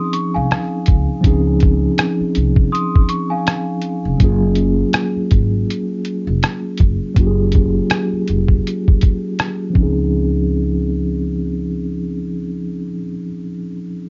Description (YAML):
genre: lo-fi hip hop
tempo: 81 BPM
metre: 4/4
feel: swing 56% on 16ths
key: Db major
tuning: A4 = 441 Hz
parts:
  - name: worn celesta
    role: second line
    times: 0.0-4.4 s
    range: F5 to Eb6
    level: -27 LUFS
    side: equal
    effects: low-pass filter, tape echo
  - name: mellow tine electric piano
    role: accompaniment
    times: 0.0-14.1 s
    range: F3 to Ab4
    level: -22 LUFS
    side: equal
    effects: cassette tape, low-pass filter
  - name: lo-fi sampler-style drum kit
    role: drums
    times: 0.1-9.9 s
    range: hi-hat, kick drum, rim click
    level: -16 LUFS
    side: equal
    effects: none
  - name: upright bass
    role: bass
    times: 0.4-12.9 s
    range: F1 to Db2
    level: -22 LUFS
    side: equal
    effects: none
room: moderate small room reverb, RT60 0.6 s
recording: cassette tape, nothing above 7.5 kHz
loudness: -17 LUFS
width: mono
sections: 0.0-10.1 A section; 10.1-13.1 B section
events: filter sweep on tine electric piano 0.0-10.1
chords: 0.0 Dbmaj9; 4.2 Gbmaj9; 9.8 Dbmaj9